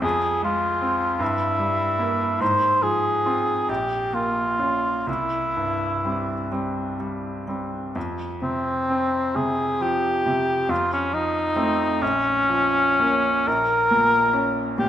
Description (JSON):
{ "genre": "classical, romantic duo for cor anglais and grand piano", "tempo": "40-52 BPM (dotted quarters)", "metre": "6/8", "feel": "rubato", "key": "F minor", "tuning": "A4 = 440 Hz", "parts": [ { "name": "mellow cor anglais", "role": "melody", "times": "0.0-14.9 s", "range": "C4 to C5", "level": "-21 LUFS", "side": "equal", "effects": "none" }, { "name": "bright grand piano", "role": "accompaniment", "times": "0.0-14.9 s", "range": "Bb1 to F4", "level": "-26 LUFS", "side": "right 1 dB", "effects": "none" } ], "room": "wet scoring stage reverb, RT60 2.1 s", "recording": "none", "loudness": "-20 LUFS", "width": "side -11 dB against mid", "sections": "0.0-8.0 A section; 8.0-14.9 B section", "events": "none", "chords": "0.0 Fm; 1.2 Edim/G; 2.4 Fm/Ab; 3.7 Bbm; 5.1 C; 8.0 F5; 10.7 F7; 12.0 Bbm; 13.5 Gdim/Bb (rootless)", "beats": "| 0.04 1.21 | 2.41 3.69 | 5.07 6.53 | 7.96 9.36 | 10.70 12.02 | 13.47 14.77" }